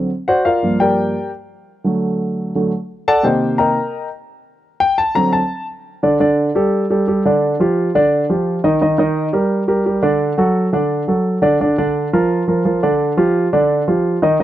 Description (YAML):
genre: latin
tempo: 172 BPM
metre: 4/4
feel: straight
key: G minor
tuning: A4 = 440 Hz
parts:
  - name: dark concert grand piano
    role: solo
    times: 0.0-14.4 s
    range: G2 to Bb5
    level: -14 LUFS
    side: equal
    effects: none
room: little or no reverb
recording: dry, close 1970s-style studio recording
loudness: -14 LUFS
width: side -13 dB against mid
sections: 0.0-6.0 A section; 6.0-14.4 B section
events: grand piano solo 0.0-6.0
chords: 0.5 Gm7; 1.9 D; 3.2 Cm7; 4.6 D7; 6.0 Dsus4; 7.4 G5/D; 8.8 Ebmaj7; 10.2 D; 11.6 Bb; 13.0 G5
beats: 0.11 | 0.46 0.81 1.15 1.50 | 1.85 2.20 2.55 2.90 | 3.24 3.59 3.94 4.29 | 4.64 4.98 5.33 5.68 | 6.03 6.38 6.73 7.08 | 7.42 7.77 8.12 8.47 | 8.82 9.17 9.52 9.86 | 10.21 10.56 10.91 11.26 | 11.61 11.95 12.30 12.65 | 13.00 13.35 13.70 14.04 | 14.39